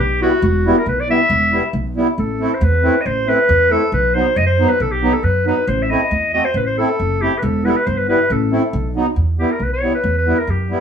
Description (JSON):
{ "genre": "klezmer", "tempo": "138 BPM", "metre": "2/4", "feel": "straight", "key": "A dorian sharp4", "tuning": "A4 = 439 Hz", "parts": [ { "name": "clear clarinet", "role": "melody", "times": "0.0-10.8 s", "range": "F#4 to E5", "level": "-17 LUFS", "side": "left 1 dB", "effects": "none" }, { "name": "upright bass", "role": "bass", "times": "0.0-10.7 s", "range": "E1 to F#2", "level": "-19 LUFS", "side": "equal", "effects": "none" }, { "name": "accordion", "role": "accompaniment", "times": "0.2-10.8 s", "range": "F#3 to F#4", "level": "-19 LUFS", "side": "right 1 dB", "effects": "light tremolo tuning" } ], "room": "moderate studio reverb, RT60 0.6 s", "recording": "none", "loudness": "-14 LUFS", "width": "side -7 dB against mid", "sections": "0.0-2.2 A section; 2.2-9.2 B section; 9.2-10.8 C section", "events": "none", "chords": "0.0 Em; 2.2 Am; 3.9 B; 5.7 Am; 7.4 Em; 8.3 Am; 8.7 B7; 9.2 Em" }